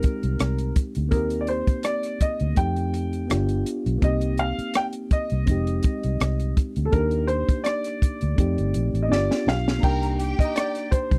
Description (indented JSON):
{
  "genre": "lush 1970s-style soul",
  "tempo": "83 BPM",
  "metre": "4/4",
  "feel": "swing 54% on 16ths",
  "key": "C minor",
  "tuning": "A4 = 438 Hz",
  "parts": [
    { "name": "warm grand piano", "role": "melody", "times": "0.0-11.2 s", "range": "A4 to G5", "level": "-31 LUFS", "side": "equal", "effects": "none" },
    { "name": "reed electric piano", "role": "accompaniment", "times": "0.0-11.2 s", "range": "Ab3 to G4", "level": "-31 LUFS", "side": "equal", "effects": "none" },
    { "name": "compact cocktail drum kit", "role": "drums", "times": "0.0-11.2 s", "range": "crash cymbal, hi-hat, kick drum, rim click, snare drum", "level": "-25 LUFS", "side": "equal", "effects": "none" },
    { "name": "vintage muted fingered electric bass", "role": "bass", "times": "0.2-11.2 s", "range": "F1 to F2", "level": "-27 LUFS", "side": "equal", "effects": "none" },
    { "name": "warm studio string section", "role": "second line", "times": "9.8-10.9 s", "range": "G4 to Bb5", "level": "-37 LUFS", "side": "equal", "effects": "none" },
    { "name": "worn celesta", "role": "texture", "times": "10.2-11.2 s", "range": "G5 to Bb5", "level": "-43 LUFS", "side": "equal", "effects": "none" }
  ],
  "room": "little or no reverb",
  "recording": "dry, close 1970s-style studio recording",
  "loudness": "-24 LUFS",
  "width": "mono",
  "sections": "0.0-9.8 A section; 9.8-11.2 B section",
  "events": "drum fill 9.1-9.8",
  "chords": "0.0 Fm7 (rootless); 1.1 Cm9; 2.6 F9; 3.3 G7; 4.0 Cm7; 5.5 Fm7; 6.9 Cm9; 8.4 F9; 9.1 G7; 9.8 Cm9"
}